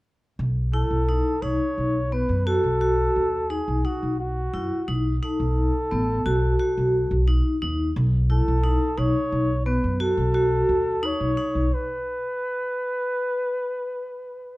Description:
contemporary instrumental, chamber music in an uneven meter; 175 BPM (eighths); 11/8; straight; B mixolydian; A4 = 444 Hz
upright bass; bass; 0.4-11.7 s; A1 to F#2; -24 LUFS; equal
breathy flugelhorn; melody; 0.7-14.6 s; F#4 to C#5; -27 LUFS; equal
vibraphone with medium hard mallets; arpeggios; 0.7-11.6 s; B3 to F#4; -25 LUFS; equal
light reverb; dark, warm production; -21 LUFS; side -19 dB against mid
0.4-14.6 A section
stop 11.7-14.6
0.4 B7

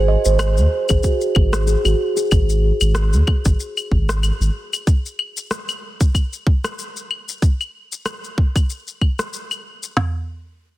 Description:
organic downtempo; 94 BPM; 4/4; swing 56% on 16ths; Ab mixolydian; A4 = 441 Hz
steel tongue drum; arpeggios; 0.0-2.2 s; Gb4 to Eb5; -21 LUFS; right 2 dB; low-pass filter, digital delay
warm sub bass; bass; 0.0-4.5 s; Ab1 to Eb2; -17 LUFS; equal; sidechain pumping
electronic shaker, rim click and claves; drums; 0.2-9.9 s; -25 LUFS; left 3 dB; soft clipping on snare
organic electronic drum kit; drums; 0.9-10.1 s; kick drum, snare drum, toms; -16 LUFS; equal; soft clipping on snare
little or no reverb; dense, heavily limited modern master; -17 LUFS; side -16 dB against mid
0.0-10.0 A section
filter sweep on steel tongue drum 0.0-2.3

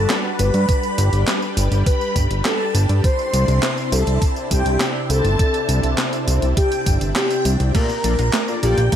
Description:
synthwave; 102 BPM; 4/4; straight; A4 = 440 Hz
warm velvety synth lead; melody; 0.0-8.9 s; G4 to C5; -24 LUFS; left 1 dB; chorus, cassette tape, digital delay, shimmer reverb
string machine, violins; second line; 0.0-8.9 s; G5 to C6; -28 LUFS; equal; ensemble chorus, digital delay, shimmer reverb
analog string pad; sustained chords; 0.0-9.0 s; C3 to B4; -25 LUFS; equal; ensemble chorus, sidechain pumping, shimmer reverb
fat analog bass; bass; 0.0-8.9 s; G1 to G2; -18 LUFS; equal; tube saturation, sidechain pumping
gated 80s digital drum machine; drums; 0.1-9.0 s; crash cymbal, handclaps, hi-hat, snare drum, tambourine; -24 LUFS; equal; gated reverb, gated reverb snare
electronic kick drum; drums; 0.7-9.0 s; -19 LUFS; equal
analog pluck; arpeggios; 7.7-9.0 s; A3 to F4; -28 LUFS; right 6 dB; chorus, shimmer reverb
analog synth brass; stabs; 7.7-9.0 s; Bb2 to D5; -26 LUFS; left 5 dB; chorus, shimmer reverb
light reverb; -16 LUFS; side -10 dB against mid
0.0-9.0 A section
0.0 Gmaj7; 3.0 Cadd9; 7.7 Bbmaj7

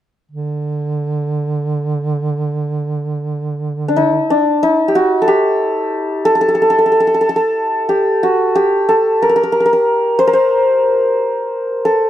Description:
Persian modal ensemble; 61 BPM (dotted quarters); 6/8; straight; D dastgah homayun; A4 = 442 Hz
mellow duduk; drone; 0.3-4.3 s; D3; -19 LUFS; right 3 dB; stereo widening
santur; melody; 3.9-12.1 s; D4 to C5; -12 LUFS; equal
light reverb; dry, close 1970s-style studio recording; -13 LUFS; side -12 dB against mid
0.3-4.3 A section; 4.3-12.1 B section

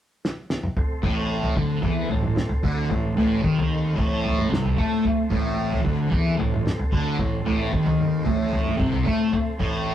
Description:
psychedelic rock; 112 BPM; 4/4; straight; A minor; A4 = 440 Hz
cloth-damped thuddy drum kit; drums; 0.2-9.7 s; kick drum, snare drum, toms; -25 LUFS; equal
tonewheel organ; sustained chords; 0.8-9.9 s; A3 to C5; -35 LUFS; right 2 dB; chorus vibrato, stopped rotary speaker
thick fuzz guitar; riff; 1.0-9.9 s; A2 to A3; -23 LUFS; equal; distortion, phaser
fuzz fingered electric bass; bass; 1.0-9.9 s; A1 to A2; -30 LUFS; equal; overdrive
moderate stone room reverb, RT60 1.0 s; rough rehearsal-room recording, warm saturation; -21 LUFS; side -11 dB against mid
0.8-9.9 A section
drum fill 0.2-0.8
0.0 N.C.; 0.8 Am

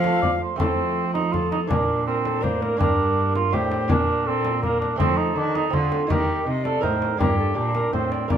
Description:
classical, renaissance-style consort dance; 164 BPM; 3/4; straight; F mixolydian; A4 = 440 Hz
alto recorder; melody; 0.0-8.4 s; G4 to F5; -27 LUFS; left 4 dB
dark cor anglais; second line; 0.0-8.4 s; Bb3 to D5; -24 LUFS; right 4 dB
lute; accompaniment; 0.0-8.4 s; G2 to Bb4; -28 LUFS; right 3 dB
rich cello; bass; 0.0-8.4 s; G2 to F3; -27 LUFS; right 2 dB
frame drum; percussion; 0.0-8.4 s; -26 LUFS; left 1 dB
wet stone room reverb, RT60 1.4 s; -20 LUFS; side -9 dB against mid
0.6-8.4 A section
0.0 F; 1.7 Bb; 2.8 Gm; 3.9 Bb; 5.0 F; 6.1 Eb; 7.2 Gm

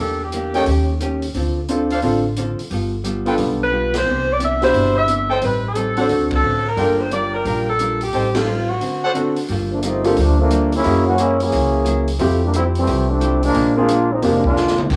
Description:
jazz, big band swing; 177 BPM; 4/4; swing 65% on 8ths; G minor; A4 = 437 Hz
mellow saxophone section; melody; 0.0-0.9, 3.6-9.4 s; F4 to E5; -22 LUFS; equal; cassette tape
vintage hollow-body jazz guitar; accompaniment; 0.0-15.0 s; A2 to Bb4; -28 LUFS; equal; cassette tape
upright bass; bass; 0.0-15.0 s; F1 to F#2; -24 LUFS; equal
open jazz drum kit; drums; 0.3-15.0 s; crash cymbal, hi-hat, kick drum, ride cymbal, snare drum, toms; -31 LUFS; equal
clear concert grand piano; accompaniment; 0.5-14.4 s; B2 to A4; -22 LUFS; equal; cassette tape
warm trumpet section; stabs; 0.5-9.1 s; D4 to B5; -26 LUFS; equal; cassette tape
clear trombone section; second line; 9.7-14.8 s; D3 to G#4; -20 LUFS; equal; cassette tape
light reverb, small room ambience; home recording on cassette; -18 LUFS; mono
0.0-9.5 A section; 9.5-15.0 B section
drum fill 3.7-4.1, 14.6-14.9; band accent 3.9, 6.3, 8.3; trombone section solo 9.5-15.0
0.0 Em7b5; 0.7 Eb7#11; 1.4 Dm7; 2.7 G9; 4.1 Cmaj9; 5.4 Am7b5; 6.1 D7; 6.8 Gm7; 8.1 Am7b5; 8.8 D7; 9.5 Gm9; 10.8 F#9; 12.2 Fmaj9; 13.6 Bb7

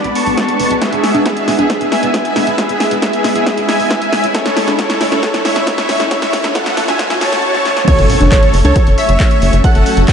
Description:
uplifting trance; 136 BPM; 4/4; straight; F# minor; A4 = 440 Hz
dense compressed supersaw; melody; 0.0-10.1 s; G#4 to C#6; -16 LUFS; equal; sidechain pumping, low-pass filter, tape echo
shimmering ambient pad; sustained chords; 0.0-10.1 s; F#3 to F#4; -18 LUFS; equal; chorus, built-in reverb, phaser, sidechain pumping
tight sequencer bass; bass; 0.0-10.1 s; E1 to E2; -15 LUFS; equal; sidechain pumping
punchy analog drum machine; drums; 0.0-10.1 s; congas, crash cymbal, handclaps, hi-hat, snare drum; -18 LUFS; equal; overdrive
electronic kick drum; drums; 0.4-10.1 s; -15 LUFS; equal; high-pass filter on kick, high-pass filter on room
riser and impact; sound effects; 3.6-9.6 s; -23 LUFS; equal
analog pluck; second line; 7.9-10.1 s; C#5 to F#5; -19 LUFS; right 3 dB; chorus, sidechain pumping, tape echo
moderate huge ambient reverb, RT60 4.9 s; dreamy mix soaked in reverb, high-pass filter, nothing above 10.7 kHz; -11 LUFS; side -7 dB against mid
0.0-7.9 A section; 7.9-10.1 B section
build-up 0.0-7.9; drum fill 0.0-7.4, 7.5-7.9; drop 7.9-10.1; impact 7.9-9.6
0.0 Bm; 0.8 E; 4.3 A; 7.9 F#m

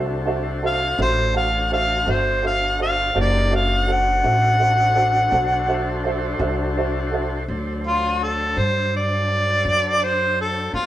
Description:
slow blues; 55 BPM (dotted quarters); 12/8; straight; D mixolydian; A4 = 441 Hz
dark upright piano; accompaniment; 0.0-7.4 s; F#4 to F#5; -26 LUFS; right 3 dB
tonewheel organ; sustained chords; 0.0-10.9 s; F#3 to C5; -29 LUFS; left 2 dB; overdrive, slow rotary speaker
upright bass; bass; 0.0-10.9 s; F#1 to G2; -24 LUFS; equal
warm harmonica; melody; 0.7-10.9 s; F4 to F#5; -19 LUFS; equal; overdrive
moderate stone room reverb, RT60 1.0 s; band playing live in one room, faint mains hum; -18 LUFS; side -13 dB against mid
0.0-7.5 A section; 7.5-10.9 B section
harmonica solo 7.5-10.9
0.0 D7

